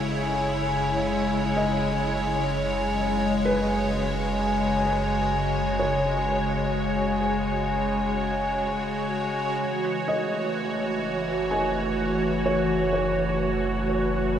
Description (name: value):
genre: ambient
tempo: 63 BPM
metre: 3/4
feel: straight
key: F# dorian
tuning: A4 = 440 Hz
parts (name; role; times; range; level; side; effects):
- evolving wavetable pad; sustained chords; 0.0-14.4 s; C#3 to C#5; -24 LUFS; equal; ensemble chorus, built-in reverb
- felt-muted upright piano; arpeggios; 0.0-14.4 s; B4 to G#5; -32 LUFS; right 1 dB; diffuse ambient delay
- deep rumbling drone; bass; 0.0-14.4 s; F#1; -33 LUFS; equal; built-in reverb
- glass harmonica; texture; 0.0-9.6 s; G#5; -30 LUFS; left 2 dB; none
room: wet huge ambient reverb, RT60 7.8 s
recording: cassette tape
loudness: -23 LUFS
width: side -9 dB against mid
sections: 0.0-9.6 A section; 9.6-14.4 B section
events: none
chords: 0.0 F#m7